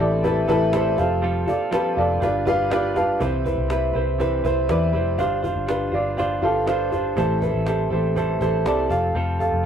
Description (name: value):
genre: piano-driven pop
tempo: 121 BPM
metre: 4/4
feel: straight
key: C major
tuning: A4 = 439 Hz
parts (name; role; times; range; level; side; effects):
- dark upright piano; accompaniment; 0.0-9.7 s; G2 to A5; -21 LUFS; right 1 dB; none
- direct-recorded clean electric guitar; riff; 0.0-9.7 s; A2 to C5; -28 LUFS; right 1 dB; none
- vintage muted fingered electric bass; bass; 0.0-9.7 s; F1 to E2; -25 LUFS; left 1 dB; none
- cajon; drums; 0.2-9.5 s; none; -35 LUFS; left 1 dB; none
room: moderate studio reverb, RT60 0.5 s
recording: rough rehearsal-room recording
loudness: -19 LUFS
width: side -8 dB against mid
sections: 0.0-3.2 A section; 3.2-9.7 B section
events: upright piano fill 2.5-3.2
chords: 0.0 Am7; 1.0 Fadd9; 2.2 G7; 3.2 Cmaj7; 5.2 G7sus4; 7.2 Am7; 8.9 Fadd9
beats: 0.24 0.73 | 1.23 1.72 2.22 2.71 | 3.21 3.70 4.20 4.69 | 5.19 5.68 6.18 6.67 | 7.17 7.67 8.16 8.65 | 9.15 9.65